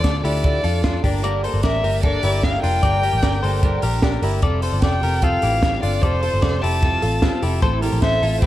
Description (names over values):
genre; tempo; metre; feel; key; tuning
jangly indie pop; 150 BPM; 4/4; straight; unclear; A4 = 436 Hz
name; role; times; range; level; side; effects
dark violin; melody; 0.0-8.5 s; C5 to A5; -23 LUFS; left 1 dB; tape echo
fingerpicked twelve-string acoustic guitar; accompaniment; 0.0-8.5 s; G2 to Bb4; -27 LUFS; right 6 dB; none
direct-recorded clean electric guitar; arpeggios; 0.0-8.5 s; E3 to D5; -25 LUFS; left 6 dB; tape echo
vintage muted picked electric bass; bass; 0.0-8.5 s; F1 to F2; -22 LUFS; equal; none
compact cocktail drum kit; drums; 0.0-8.5 s; hi-hat, kick drum, snare drum; -22 LUFS; equal; none
room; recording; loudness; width
light reverb, small room ambience; echo-heavy mix; -17 LUFS; side -14 dB against mid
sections
0.0-8.5 A section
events
none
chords
0.0 Dm; 1.0 Fadd9; 7.6 Am